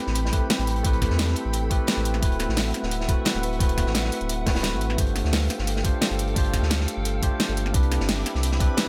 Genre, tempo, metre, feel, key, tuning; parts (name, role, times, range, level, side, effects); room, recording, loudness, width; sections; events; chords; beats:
liquid drum and bass; 174 BPM; 4/4; straight; A4 = 440 Hz
barky tine electric piano; accompaniment; 0.0-8.9 s; A3 to C5; -32 LUFS; equal; low-pass filter, digital delay
glassy FM pad; sustained chords; 0.0-8.9 s; C4 to D6; -36 LUFS; equal; ensemble chorus, built-in reverb, sidechain pumping
warm sub bass; bass; 0.1-8.7 s; D1 to E2; -28 LUFS; equal
crunchy breakbeat drum kit; drums; 0.1-8.9 s; hi-hat, snare drum; -34 LUFS; equal; high-pass filter on hats, small room ambience, high-pass filter on snare, high-pass filter on room
pop drum kit; drums; 0.2-8.8 s; hi-hat, snare drum; -30 LUFS; equal; small room ambience
electronic kick drum; drums; 0.3-8.7 s; -26 LUFS; equal; small room ambience
light reverb; -24 LUFS; mono
0.0-8.9 A section
0.0 Am9; 2.2 D13; 5.0 G9sus4; 7.7 Cmaj9
0.16 0.50 | 0.85 1.19 1.54 1.88 | 2.23 2.57 2.92 3.26 | 3.60 3.95 4.29 4.64 | 4.98 5.33 5.67 6.02 | 6.36 6.71 7.05 7.40 | 7.74 8.09 8.43 8.78